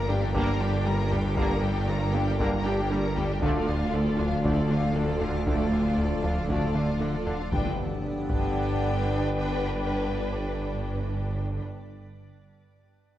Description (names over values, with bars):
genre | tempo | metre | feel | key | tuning
cinematic, hybrid orchestral and electronic film score | 117 BPM | 4/4 | straight | unclear | A4 = 441 Hz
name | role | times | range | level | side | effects
warm symphonic violin section | melody | 0.0-11.6 s | D5 to Bb5 | -37 LUFS | left 4 dB | none
warm symphonic violin section | second line | 0.0-11.6 s | F4 to B4 | -36 LUFS | left 2 dB | none
rich symphonic viola section | accompaniment | 0.0-11.6 s | Bb3 to F4 | -37 LUFS | right 1 dB | none
icy glass pad | sustained chords | 0.0-10.8 s | F3 to D5 | -39 LUFS | equal | chorus, built-in reverb
clear symphonic cello section | bass | 0.0-11.6 s | D2 to G2 | -33 LUFS | equal | none
dark tuba | bass | 0.0-11.6 s | G1 to D2 | -32 LUFS | right 2 dB | none
pure sine sub bass | bass | 0.0-11.6 s | D1 to G1 | -37 LUFS | equal | none
rich symphonic double bass section | bass | 0.0-11.6 s | G1 to D2 | -33 LUFS | right 2 dB | none
warbly dusty pluck | arpeggios | 0.1-7.2 s | D3 to D4 | -37 LUFS | right 3 dB | none
fat analog bass | riff | 0.1-7.4 s | D2 to G3 | -32 LUFS | left 2 dB | none
bright trombone section | sustained chords | 0.3-10.8 s | D3 to B3 | -37 LUFS | right 1 dB | none
solo taiko drums | drums | 0.3-8.5 s | none | -34 LUFS | equal | none
mellow French horn section | sustained chords | 0.4-10.8 s | D4 to G4 | -36 LUFS | left 3 dB | none
impact | sound effects | 7.5-9.6 s | none | -37 LUFS | left 1 dB | none
room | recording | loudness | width
moderate scoring stage reverb, RT60 1.8 s | worn, warbling old tape, cassette tape, warbly pitch drift | -24 LUFS | side -13 dB against mid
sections
0.0-7.5 A section; 7.5-11.6 B section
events
impact 7.5-9.6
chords
0.0 Gm; 3.4 Dm; 7.5 G